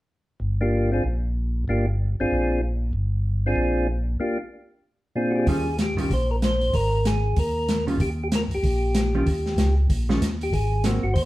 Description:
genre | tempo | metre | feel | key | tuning
soul jazz organ trio | 190 BPM | 4/4 | swing 61% on 8ths | Eb major | A4 = 440 Hz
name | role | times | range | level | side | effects
mellow tonewheel organ | bass | 0.4-11.3 s | G1 to Eb2 | -24 LUFS | equal | slow rotary speaker
percussive tonewheel organ | melody | 0.6-11.2 s | Bb2 to C5 | -25 LUFS | equal | slow rotary speaker
hollow-body jazz guitar | accompaniment | 5.5-11.0 s | Eb3 to F4 | -27 LUFS | right 2 dB | none
open jazz drum kit | drums | 5.5-11.2 s | hi-hat, kick drum, snare drum | -26 LUFS | equal | none
room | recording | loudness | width
wet studio reverb, RT60 0.8 s | heard from further back in the room | -21 LUFS | side -17 dB against mid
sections
0.4-5.5 A section; 5.5-11.3 B section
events
break 4.2-5.5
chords
0.4 Gm7; 1.0 N.C.; 1.7 Gm7; 2.3 Bb9; 2.9 G5; 3.6 Bb9; 4.2 Gm7; 4.8 Bb9; 5.5 Eb9; 6.7 Absus2; 8.0 Eb7; 10.5 Ab9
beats
| 0.41 0.73 1.05 1.36 | 1.68 2.00 2.31 2.63 | 2.95 3.26 3.58 3.90 | 4.21 4.53 4.84 5.16 | 5.47 5.79 6.11 6.42 | 6.74 7.05 7.37 7.68 | 8.00 8.32 8.63 8.95 | 9.26 9.58 9.89 10.21 | 10.53 10.84 11.16

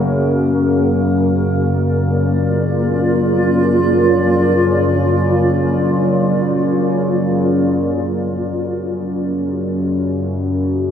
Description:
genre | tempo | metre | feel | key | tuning
ambient | free time | none | none | unclear | A4 = 445 Hz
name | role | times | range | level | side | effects
granular cloud pad | sustained chords | 0.0-8.1 s | A#3 to D5 | -18 LUFS | equal | built-in reverb
analog drone | drone | 0.0-10.9 s | F#2 to C#3 | -16 LUFS | equal | chorus, phaser
room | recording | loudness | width
wet huge ambient reverb, RT60 8.1 s | none | -14 LUFS | side -8 dB against mid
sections
0.0-8.1 A section; 8.1-10.9 A section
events
none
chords
0.0 A#; 8.1 F#5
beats
free time

